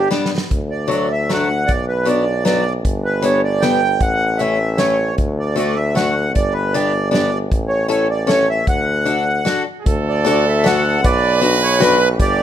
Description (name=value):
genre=alpine folk, alpine dance band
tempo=155 BPM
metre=3/4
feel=rubato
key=D major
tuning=A4 = 440 Hz
part: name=accordion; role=melody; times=0.0-12.4 s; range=B4 to G5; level=-19 LUFS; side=right 2 dB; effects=none
part: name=clear trumpet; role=second line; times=0.0-0.5, 9.8-12.4 s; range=B3 to B4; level=-20 LUFS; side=right 6 dB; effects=none
part: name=clear tuba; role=bass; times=0.0-12.4 s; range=G1 to D2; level=-20 LUFS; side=left 1 dB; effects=none
part: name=picked acoustic archtop guitar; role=accompaniment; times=0.1-12.0 s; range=F#3 to B4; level=-20 LUFS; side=left 5 dB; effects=none
part: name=loose indie drum kit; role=drums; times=0.1-12.3 s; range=hi-hat, kick drum, snare drum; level=-20 LUFS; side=equal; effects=none
room=little or no reverb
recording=close, detailed microphones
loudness=-14 LUFS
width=side -10 dB against mid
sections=0.5-9.9 A section; 9.9-12.4 A section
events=drum fill 0.1-0.5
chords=0.0 G; 0.5 D; 1.7 Bm; 2.8 G; 4.0 A; 5.2 D; 6.4 G; 7.5 A; 8.7 D; 11.0 Bm